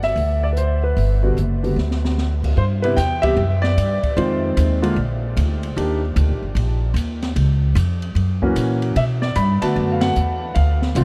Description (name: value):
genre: jazz piano trio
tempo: 150 BPM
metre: 4/4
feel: swing 65% on 8ths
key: unclear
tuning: A4 = 440 Hz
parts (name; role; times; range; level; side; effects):
- clear grand piano; melody; 0.0-6.0, 8.4-11.0 s; C3 to B5; -24 LUFS; equal; subtle chorus, delay
- upright bass; bass; 0.0-11.0 s; F#1 to B2; -21 LUFS; equal; none
- open jazz drum kit; drums; 0.0-11.0 s; crash cymbal, hi-hat, kick drum, ride cymbal, snare drum; -31 LUFS; equal; none
room: light reverb, small room reverb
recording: none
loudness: -19 LUFS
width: mono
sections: 0.0-2.6 A section; 2.6-11.0 B section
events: drum fill 1.8-2.2; band accent 3.2, 10.0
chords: 0.0 Gmaj7; 2.6 Cmaj7 (rootless); 4.2 Fm7; 5.0 Bb; 5.8 Eb5; 7.4 C#; 8.2 F#7; 9.0 Bm7